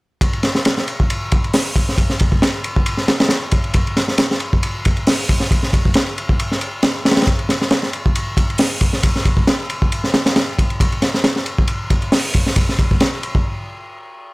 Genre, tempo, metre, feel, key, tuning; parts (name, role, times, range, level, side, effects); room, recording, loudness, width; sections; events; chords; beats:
breakbeat; 136 BPM; 4/4; swing 54% on 16ths
crunchy breakbeat drum kit; drums; 0.2-13.4 s; hi-hat, kick drum, ride cymbal, snare drum; -15 LUFS; equal
light reverb; -15 LUFS; side -24 dB against mid
0.2-14.3 A section
stop 13.5-14.3
| 0.21 0.66 1.10 1.54 | 1.98 2.42 2.86 3.30 | 3.75 4.19 4.63 5.07 | 5.51 5.95 6.39 6.83 | 7.27 7.71 8.16 8.60 | 9.04 9.48 9.92 10.36 | 10.80 11.24 11.69 12.13 | 12.57 13.01